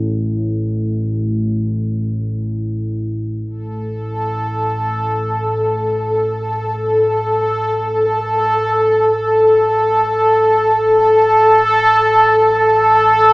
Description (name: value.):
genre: dark ambient drone.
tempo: free time.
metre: none.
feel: none.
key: unclear.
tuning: A4 = 439 Hz.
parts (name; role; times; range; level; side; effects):
deep rumbling drone; drone; 0.0-13.3 s; A1 to A2; -23 LUFS; equal; built-in reverb, wide subtle chorus.
bubbling stepped-filter texture; texture; 3.9-13.3 s; A4; -16 LUFS; equal; chorus, built-in reverb.
room: wet huge ambient reverb, RT60 8.8 s.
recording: small speaker sound.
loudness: -13 LUFS.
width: side -22 dB against mid.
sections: 0.0-3.5 A section; 3.5-13.3 B section.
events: none.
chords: none.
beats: free time.